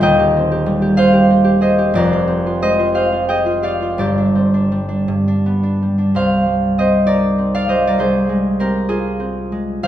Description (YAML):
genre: classical, solo harp piece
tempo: 54-68 BPM (dotted quarters)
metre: 6/8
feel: rubato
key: C minor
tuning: A4 = 440 Hz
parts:
  - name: concert harp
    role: solo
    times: 0.0-9.9 s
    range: Eb1 to G5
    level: -13 LUFS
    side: equal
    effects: none
room: wet recital hall reverb, RT60 1.5 s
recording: recorded in a church or concert hall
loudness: -13 LUFS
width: side -11 dB against mid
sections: 0.0-6.1 A section; 6.1-9.9 B section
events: none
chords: 0.0 Cm/Eb; 1.9 Fm; 4.0 Gsus4; 5.1 G; 6.1 Cm; 8.0 Fm/C